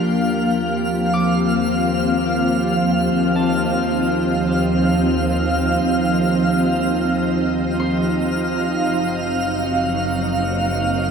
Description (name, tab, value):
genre	ambient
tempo	54 BPM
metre	4/4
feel	straight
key	unclear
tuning	A4 = 440 Hz
part	soft additive organ-like pad	sustained chords	0.0-11.1 s	F3 to G4	-18 LUFS	equal	ensemble chorus, built-in reverb
part	Celtic harp	arpeggios	0.0-9.2 s	A5 to D6	-34 LUFS	equal	ping-pong delay
part	dark studio double bass section	bass	0.0-11.1 s	Gb1 to Eb2	-27 LUFS	equal	none
part	twinkling granular texture	texture	0.0-11.1 s	F5 to F6	-23 LUFS	right 1 dB	built-in reverb
room	wet cathedral reverb, RT60 6.4 s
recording	in a vast, echoing space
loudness	-17 LUFS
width	side -6 dB against mid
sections	0.0-11.1 A section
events	none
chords	0.0 Eb69; 8.9 Gb6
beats	| 0.02 1.13 2.24 3.35 | 4.47 5.58 6.69 7.80 | 8.91 10.02